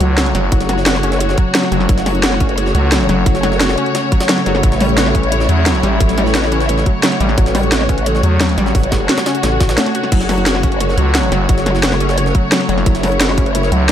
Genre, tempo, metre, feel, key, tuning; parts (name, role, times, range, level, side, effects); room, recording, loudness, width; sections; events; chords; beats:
dark technical drum and bass; 175 BPM; 4/4; straight; F# minor; A4 = 440 Hz
warm studio string section; sustained chords; 0.0-13.9 s; C#3 to C#5; -19 LUFS; equal; sidechain pumping
wide unison pluck; arpeggios; 0.0-13.9 s; F#3 to F#4; -19 LUFS; left 1 dB; vintage 12-bit sampler grit, sidechain pumping, tape echo
growling FM bass; bass; 0.0-3.2, 5.5-8.7, 11.0-13.9 s; F#1 to E2; -15 LUFS; equal
drum and bass drum kit; drums; 0.0-13.9 s; crash cymbal, hi-hat, snare drum; -19 LUFS; equal
jungle sampler-style drum kit; drums; 0.0-13.9 s; hi-hat, snare drum; -27 LUFS; equal; high-pass filter on hats, high-pass filter on snare
growl bass; bass; 0.5-13.7 s; F#1 to A1; -18 LUFS; equal; chorus, overdrive, sidechain pumping
electronic kick drum; drums; 0.5-13.4 s; -15 LUFS; equal
moderate plate reverb, RT60 2.6 s; dreamy mix soaked in reverb; -12 LUFS; side -10 dB against mid
0.0-13.9 A section
0.0 F#m; 4.6 A; 10.1 F#m
0.18 | 0.52 0.86 1.21 1.55 | 1.89 2.23 2.58 2.92 | 3.26 3.60 3.95 4.29 | 4.63 4.98 5.32 5.66 | 6.00 6.35 6.69 7.03 | 7.38 7.72 8.06 8.40 | 8.75 9.09 9.43 9.78 | 10.12 10.46 10.80 11.15 | 11.49 11.83 12.18 12.52 | 12.86 13.21 13.55 13.89